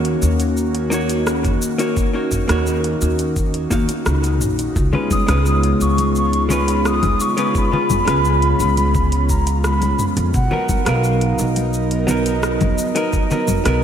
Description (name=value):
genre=sunset chillout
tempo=86 BPM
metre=4/4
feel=straight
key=Eb minor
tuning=A4 = 440 Hz
part: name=vintage hollow-body jazz guitar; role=accompaniment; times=0.0-13.8 s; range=F#3 to F5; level=-22 LUFS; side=moving between left 3 dB and right 5 dB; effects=auto-pan, diffuse ambient delay
part: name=airy breathy pad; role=sustained chords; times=0.0-13.8 s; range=Db3 to A#4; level=-23 LUFS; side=equal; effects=chorus
part: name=upright bass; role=bass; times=0.0-13.8 s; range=Bb1 to F2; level=-20 LUFS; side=equal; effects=none
part: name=deep house drum kit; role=drums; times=0.0-13.8 s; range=cabasa, hi-hat, rim click, toms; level=-26 LUFS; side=equal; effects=none
part: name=electronic kick drum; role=drums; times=1.4-13.6 s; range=none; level=-21 LUFS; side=equal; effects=none
part: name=congas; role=percussion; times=4.9-13.6 s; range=none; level=-27 LUFS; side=left 4 dB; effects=none
part: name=breathy mellow concert flute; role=melody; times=5.1-13.8 s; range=D#5 to Eb6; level=-22 LUFS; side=left 1 dB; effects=diffuse ambient delay
room=moderate lush hall reverb, RT60 2.3 s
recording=dreamy mix soaked in reverb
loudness=-15 LUFS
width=side -9 dB against mid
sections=0.0-13.8 A section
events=none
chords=0.0 Ebm7; 4.8 Db7; 10.3 Bmaj7